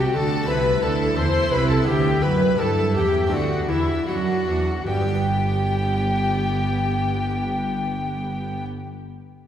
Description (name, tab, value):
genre	classical, baroque-style concerto movement with solo episodes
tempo	76-89 BPM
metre	4/4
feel	straight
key	G major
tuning	A4 = 440 Hz
part	clear chamber violin section	melody	0.0-8.7 s	E5 to C6	-33 LUFS	left 2 dB	none
part	tenor recorder	melody	0.0-8.6 s	E4 to G5	-25 LUFS	left 3 dB	none
part	rich chamber violin section	second line	0.0-8.6 s	E4 to C5	-29 LUFS	left 2 dB	none
part	harpsichord	accompaniment	0.0-8.9 s	G2 to B4	-33 LUFS	left 1 dB	none
part	rich chamber viola section	accompaniment	0.0-8.7 s	B3 to F#4	-30 LUFS	equal	none
part	dark chamber cello section	bass	0.0-8.7 s	G2 to G3	-27 LUFS	right 3 dB	none
part	warm chamber double bass section	bass	0.0-8.6 s	G1 to G2	-25 LUFS	right 2 dB	none
room	wet concert hall reverb, RT60 2.3 s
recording	heard from further back in the room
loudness	-19 LUFS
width	side -9 dB against mid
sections	0.0-4.9 A section; 4.9-8.0 B section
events	slowing down 0.0-4.9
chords	0.5 Am/C; 1.9 G/D; 3.3 D7; 4.9 G